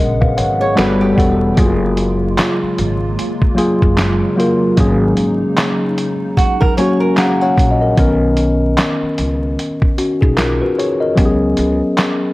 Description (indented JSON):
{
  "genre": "lo-fi hip hop",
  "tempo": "75 BPM",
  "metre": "4/4",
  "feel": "swing 59% on 16ths",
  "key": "F# major",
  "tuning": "A4 = 440 Hz",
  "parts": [
    { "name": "mellow tine electric piano", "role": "accompaniment", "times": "0.0-12.3 s", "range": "D#3 to A#5", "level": "-15 LUFS", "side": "left 1 dB", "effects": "overdrive" },
    { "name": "hollow soft pad", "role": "sustained chords", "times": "0.0-7.9 s", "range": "C#3 to F#5", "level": "-24 LUFS", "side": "right 1 dB", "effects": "ensemble chorus" },
    { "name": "upright bass", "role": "bass", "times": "0.0-11.8 s", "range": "E1 to C#2", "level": "-19 LUFS", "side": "equal", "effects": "none" },
    { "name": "lo-fi sampler-style drum kit", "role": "drums", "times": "0.2-12.2 s", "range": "handclaps, hi-hat, kick drum, snare drum", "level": "-16 LUFS", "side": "equal", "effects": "none" },
    { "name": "flamenco guitar", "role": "second line", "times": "0.6-1.5, 6.4-7.9 s", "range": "F#4 to C#5", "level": "-22 LUFS", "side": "right 3 dB", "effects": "tape echo" }
  ],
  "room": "moderate spring reverb, RT60 2.7 s",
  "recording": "vinyl crackle",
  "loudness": "-12 LUFS",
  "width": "side -19 dB against mid",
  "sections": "0.0-12.3 A section",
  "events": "none",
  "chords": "0.0 C#7sus4; 0.8 Gmaj9; 1.6 F#maj9; 4.8 G#9sus4; 8.0 Bmaj9; 11.2 C#7sus4",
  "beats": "0.78 | 1.58 2.38 3.18 3.98 | 4.78 5.58 6.38 7.18 | 7.98 8.78 9.58 10.38 | 11.18 11.98"
}